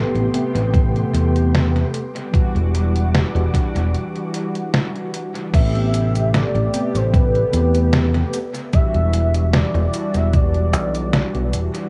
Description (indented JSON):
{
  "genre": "vaporwave",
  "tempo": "75 BPM",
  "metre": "4/4",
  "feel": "swing 53% on 16ths",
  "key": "E minor",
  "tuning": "A4 = 440 Hz",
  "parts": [
    { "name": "mellow synth brass", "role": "accompaniment", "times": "0.0-11.9 s", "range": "C3 to G4", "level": "-26 LUFS", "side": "equal", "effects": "analog chorus, dub echo" },
    { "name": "soft string machine", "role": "sustained chords", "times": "0.0-5.5 s", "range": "G3 to D6", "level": "-31 LUFS", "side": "equal", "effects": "ensemble chorus" },
    { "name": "fingered electric bass", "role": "bass", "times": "0.0-11.7 s", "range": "E1 to E2", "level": "-21 LUFS", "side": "equal", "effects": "none" },
    { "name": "detuned 8-bit digital drum machine", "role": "drums", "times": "0.2-11.9 s", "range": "cabasa, crash cymbal, hi-hat, snare drum", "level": "-26 LUFS", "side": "equal", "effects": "vintage 12-bit sampler grit, dub echo" },
    { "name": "electronic kick drum", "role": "drums", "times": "0.7-10.5 s", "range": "none", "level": "-19 LUFS", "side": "equal", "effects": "vintage 12-bit sampler grit" },
    { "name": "warm velvety synth lead", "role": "melody", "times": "5.5-11.5 s", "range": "B4 to E5", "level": "-27 LUFS", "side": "equal", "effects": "chorus, dub echo" }
  ],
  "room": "light reverb",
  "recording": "echo-heavy mix, cassette tape",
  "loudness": "-19 LUFS",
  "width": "mono",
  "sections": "0.0-5.5 A section; 5.5-11.9 B section",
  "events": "break 3.9-5.5",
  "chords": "0.0 Am9; 1.9 Em9; 5.5 Am9; 8.3 Em9",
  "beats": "0.74 1.54 | 2.34 3.14 3.94 4.74 | 5.54 6.34 7.14 7.94 | 8.74 9.54 10.34 11.14"
}